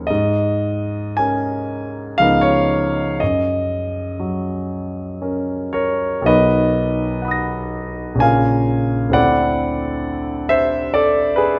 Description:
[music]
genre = classical, impressionist solo piano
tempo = 52-69 BPM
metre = 3/4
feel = rubato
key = unclear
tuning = A4 = 440 Hz
[part]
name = clear concert grand piano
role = solo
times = 0.0-11.6 s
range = A#1 to A#6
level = -19 LUFS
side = equal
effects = none
[sound]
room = moderate recital hall reverb, RT60 1.7 s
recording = close, detailed microphones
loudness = -19 LUFS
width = mono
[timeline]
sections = 0.0-6.3 A section; 6.3-11.6 B section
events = none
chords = 0.1 G#sus24; 2.2 C#13; 3.2 F#6; 6.3 Bmaj7; 8.2 A#m7; 9.2 D9

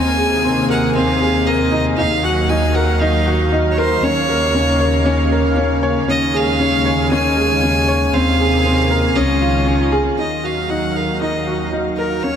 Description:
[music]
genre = piano and strings electronica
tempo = 117 BPM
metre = 4/4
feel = straight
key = Eb dorian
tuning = A4 = 440 Hz
[part]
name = bright violin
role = melody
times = 0.0-12.4 s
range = Bb4 to Ab5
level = -20 LUFS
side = right 1 dB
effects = none
[part]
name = lush unison pad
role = sustained chords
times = 0.0-12.4 s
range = C3 to F5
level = -22 LUFS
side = equal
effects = chorus
[part]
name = clear baby grand piano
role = riff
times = 0.0-12.4 s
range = C4 to Db5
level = -18 LUFS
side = left 1 dB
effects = none
[part]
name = rich chamber double bass section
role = bass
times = 0.0-12.4 s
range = Db2 to Eb2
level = -20 LUFS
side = equal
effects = none
[sound]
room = moderate huge ambient reverb, RT60 7.8 s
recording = none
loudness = -14 LUFS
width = side -8 dB against mid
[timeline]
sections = 0.0-10.2 A section; 10.2-12.4 B section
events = none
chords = 0.0 Abadd9/Eb; 2.0 Ebmadd9; 4.0 Bbm/Eb; 6.1 Db/Eb; 8.1 Abadd9/Eb; 9.2 Dbadd9; 10.2 Ebmadd9

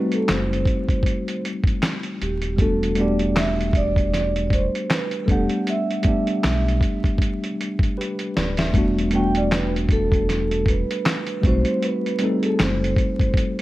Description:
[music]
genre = lo-fi hip hop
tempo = 78 BPM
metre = 4/4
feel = swing 57% on 16ths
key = E minor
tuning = A4 = 440 Hz
[part]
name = vibraphone with soft mallets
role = melody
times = 0.0-13.6 s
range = G4 to G5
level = -26 LUFS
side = right 3 dB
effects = low-pass filter, analog delay
[part]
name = tine electric piano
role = accompaniment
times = 0.0-13.6 s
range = G3 to F#5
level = -24 LUFS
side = left 1 dB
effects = medium stereo tremolo, cassette tape, low-pass filter
[part]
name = dusty soul sampler-style drum kit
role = drums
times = 0.1-13.6 s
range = handclaps, hi-hat, kick drum, snare drum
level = -22 LUFS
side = equal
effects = vintage 12-bit sampler grit
[part]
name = sub bass with octave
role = bass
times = 0.3-13.0 s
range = D1 to B1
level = -25 LUFS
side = equal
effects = none
[sound]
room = digital ambience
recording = vinyl crackle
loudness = -19 LUFS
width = side -17 dB against mid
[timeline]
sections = 0.0-8.7 A section; 8.7-13.6 A section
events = drum fill 8.0-8.7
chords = 0.0 B7b9b13 (rootless); 2.6 Em11; 11.4 B7b9b13

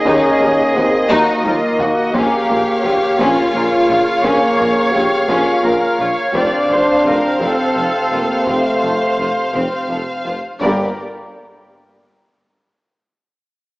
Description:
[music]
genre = cinematic, epic orchestral film score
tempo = 57 BPM (dotted quarters)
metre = 6/8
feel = straight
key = unclear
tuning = A4 = 440 Hz
[part]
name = warm chamber violin section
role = melody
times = 0.0-11.0 s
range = D5 to F5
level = -21 LUFS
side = equal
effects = none
[part]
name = clear studio viola section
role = accompaniment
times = 0.0-11.0 s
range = F4 to D5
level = -21 LUFS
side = equal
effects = none
[part]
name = mellow French horn section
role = sustained chords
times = 0.0-10.9 s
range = G3 to G4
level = -18 LUFS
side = equal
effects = none
[part]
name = mellow trombone section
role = sustained chords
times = 0.0-10.9 s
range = C3 to C4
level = -23 LUFS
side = right 1 dB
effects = none
[part]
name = rich symphonic violin section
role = second line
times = 0.1-11.0 s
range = C4 to Db5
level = -21 LUFS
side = left 1 dB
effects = none
[part]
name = mellow tuba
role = bass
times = 0.1-10.9 s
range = F1 to Eb2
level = -25 LUFS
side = equal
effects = none
[part]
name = rich symphonic cello section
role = bass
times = 0.1-11.0 s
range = Eb2 to Bb2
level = -26 LUFS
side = equal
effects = none
[part]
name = rich symphonic double bass section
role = bass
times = 0.1-11.0 s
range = F1 to Eb2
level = -28 LUFS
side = equal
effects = none
[part]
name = taiko ensemble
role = drums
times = 0.1-12.0 s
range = none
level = -30 LUFS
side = equal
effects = none
[sound]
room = wet scoring stage reverb, RT60 1.9 s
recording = worn, warbling old tape, cassette tape, warbly pitch drift, small speaker sound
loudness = -13 LUFS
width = side -22 dB against mid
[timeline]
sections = 0.0-10.6 A section; 10.6-12.7 B section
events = drum fill 1.1-2.1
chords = 0.0 Ebm; 2.1 Bbm; 6.3 F; 10.6 Gm

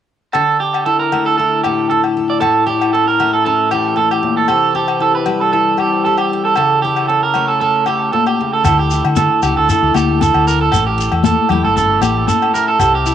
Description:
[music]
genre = highlife guitar band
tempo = 116 BPM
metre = 4/4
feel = swing 55% on 16ths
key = unclear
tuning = A4 = 440 Hz
[part]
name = picked steel-string acoustic guitar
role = accompaniment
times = 0.3-13.1 s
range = A2 to E5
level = -19 LUFS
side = left 6 dB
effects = cassette tape
[part]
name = electric guitar at the edge of break-up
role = arpeggios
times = 0.3-13.1 s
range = G4 to D5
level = -14 LUFS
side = right 5 dB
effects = cassette tape, tape echo
[part]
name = agogo bells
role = percussion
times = 0.3-12.9 s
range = none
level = -23 LUFS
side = left 9 dB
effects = none
[part]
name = hollow-body short-scale fingered electric bass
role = bass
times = 8.6-13.1 s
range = G1 to D3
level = -18 LUFS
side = equal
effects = none
[part]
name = shekere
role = percussion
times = 8.6-13.1 s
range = none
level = -22 LUFS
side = left 4 dB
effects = none
[part]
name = congas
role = percussion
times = 8.7-12.9 s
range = none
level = -19 LUFS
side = left 10 dB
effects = none
[sound]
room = moderate spring reverb, RT60 2.7 s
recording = home recording on cassette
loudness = -12 LUFS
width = side -9 dB against mid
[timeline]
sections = 0.3-8.7 A section; 8.7-13.1 B section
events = none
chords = 0.3 Dsus2; 2.4 A; 4.5 C; 6.6 A/C#; 8.7 Dsus2; 10.7 A

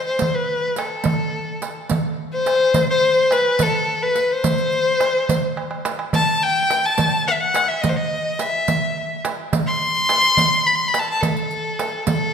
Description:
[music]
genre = Arabic maqam ensemble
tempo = 71 BPM (dotted quarters)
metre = 6/8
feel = straight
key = A maqam nikriz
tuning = A4 = 440 Hz
[part]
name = rich violin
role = melody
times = 0.0-12.3 s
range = A4 to C6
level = -18 LUFS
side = left 2 dB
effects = none
[part]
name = darbuka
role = percussion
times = 0.2-12.2 s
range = none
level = -24 LUFS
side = right 3 dB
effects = none
[part]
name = riq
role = percussion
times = 0.2-12.2 s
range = none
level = -29 LUFS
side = right 5 dB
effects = none
[sound]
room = wet scoring stage reverb, RT60 1.8 s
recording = minimal, uncompressed stereo recording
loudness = -17 LUFS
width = side -7 dB against mid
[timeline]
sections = 0.0-12.3 A section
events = drum fill 5.6-6.1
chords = none

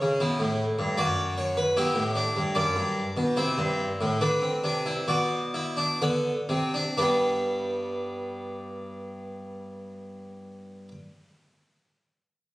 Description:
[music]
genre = classical, baroque-style 3-part fugue for harpsichord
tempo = 59-78 BPM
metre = 3/4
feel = straight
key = G major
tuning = A4 = 438 Hz
[part]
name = harpsichord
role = solo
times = 0.0-10.9 s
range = F#2 to F#5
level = -25 LUFS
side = equal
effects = none
[sound]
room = wet recital hall reverb, RT60 1.6 s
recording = recorded on a phone in the room, studio reverb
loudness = -24 LUFS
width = side -18 dB against mid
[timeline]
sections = 0.0-7.0 A section; 7.0-10.0 B section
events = slowing down 0.6-7.0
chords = 0.0 A7; 1.0 D/F#; 1.8 G; 3.4 C; 4.2 Bmadd11; 6.0 D7; 7.0 G

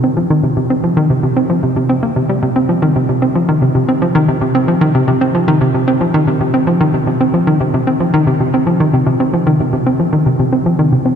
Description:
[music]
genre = ambient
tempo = 113 BPM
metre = 4/4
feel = straight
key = C minor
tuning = A4 = 440 Hz
[part]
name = hollow square pluck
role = solo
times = 0.0-11.1 s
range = C3 to C4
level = -11 LUFS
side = equal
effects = chorus, ping-pong delay
[sound]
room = wet cathedral reverb, RT60 6.3 s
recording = in a vast, echoing space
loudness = -11 LUFS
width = side -7 dB against mid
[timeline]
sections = 0.0-10.9 A section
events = none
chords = none

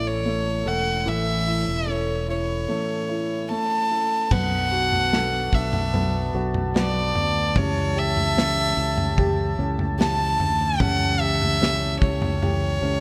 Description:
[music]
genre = pop ballad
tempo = 74 BPM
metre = 4/4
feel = straight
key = unclear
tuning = A4 = 445 Hz
[part]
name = warm violin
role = melody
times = 0.0-13.0 s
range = C#5 to A5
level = -27 LUFS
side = equal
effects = none
[part]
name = warm upright piano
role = accompaniment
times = 0.0-13.0 s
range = E3 to A4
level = -32 LUFS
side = equal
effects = subtle chorus
[part]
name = nylon-string guitar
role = arpeggios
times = 0.0-13.0 s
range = A2 to A4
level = -35 LUFS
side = equal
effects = subtle chorus, delay
[part]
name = fingered electric bass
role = bass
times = 0.0-13.0 s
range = E1 to D2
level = -29 LUFS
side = equal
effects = none
[part]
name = mellow brass ensemble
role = sustained chords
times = 4.3-13.0 s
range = F#4 to A5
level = -36 LUFS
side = equal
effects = none
[part]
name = modern studio drum kit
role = drums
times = 4.3-12.6 s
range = crash cymbal, kick drum, snare drum, toms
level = -28 LUFS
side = equal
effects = none
[sound]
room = light reverb, studio ambience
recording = bright 1980s-style digital production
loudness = -23 LUFS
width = mono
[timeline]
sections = 0.0-4.3 A section; 4.3-13.0 B section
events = none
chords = 0.0 A; 4.3 Bm7; 7.6 A7/C#

